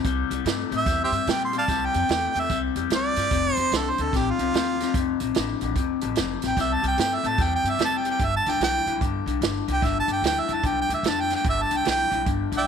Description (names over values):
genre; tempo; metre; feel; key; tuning
electric blues shuffle; 147 BPM; 4/4; swing 64% on 8ths; C major; A4 = 440 Hz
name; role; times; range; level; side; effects
electric guitar through a small old amp; riff; 0.0-12.7 s; F2 to A3; -27 LUFS; left 14 dB; none
upright bass; bass; 0.0-12.6 s; F1 to Bb2; -31 LUFS; equal; none
vintage drum kit; drums; 0.0-12.6 s; hi-hat, kick drum, snare drum; -28 LUFS; right 4 dB; none
warm harmonica; melody; 0.8-12.7 s; F4 to C6; -24 LUFS; right 3 dB; none
room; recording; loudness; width
light reverb, small room ambience; 1960s-style stereo; -21 LUFS; side -7 dB against mid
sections
0.0-12.7 A section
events
none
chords
0.1 C; 3.3 F; 6.6 C; 8.2 G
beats
| 0.06 0.47 0.88 1.28 | 1.69 2.10 2.50 2.91 | 3.32 3.72 4.13 4.54 | 4.95 5.35 5.76 6.17 | 6.57 6.98 7.39 7.79 | 8.20 8.61 9.01 9.42 | 9.83 10.23 10.64 11.05 | 11.46 11.86 12.27